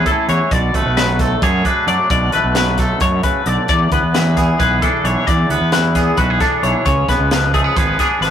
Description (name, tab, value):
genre	math rock and midwest emo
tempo	265 BPM (eighths)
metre	7/8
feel	straight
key	unclear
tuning	A4 = 439 Hz
part	twangy electric guitar	accompaniment	0.0-8.3 s	E2 to G#4	-19 LUFS	right 4 dB	none
part	twelve-string electric guitar	arpeggios	0.0-8.3 s	G#4 to D5	-18 LUFS	left 6 dB	none
part	fuzz fingered electric bass	bass	0.0-8.3 s	G#1 to F#2	-18 LUFS	equal	overdrive
part	crisp fusion drum kit	drums	0.1-8.3 s	hi-hat, kick drum, snare drum	-20 LUFS	right 1 dB	none
room	light reverb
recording	rough rehearsal-room recording, warm saturation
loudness	-13 LUFS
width	side -9 dB against mid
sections	0.0-8.3 A section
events	none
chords	0.0 Amaj7; 0.5 Bm7; 3.7 E7; 6.9 C#7b9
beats	0.06 0.29 | 0.51 0.74 0.97 1.19 1.42 1.65 1.87 | 2.10 2.33 2.55 2.78 3.01 3.23 3.46 | 3.69 3.91 4.14 4.37 4.59 4.82 5.04 | 5.27 5.50 5.72 5.95 6.18 6.40 6.63 | 6.86 7.08 7.31 7.54 7.76 7.99 8.21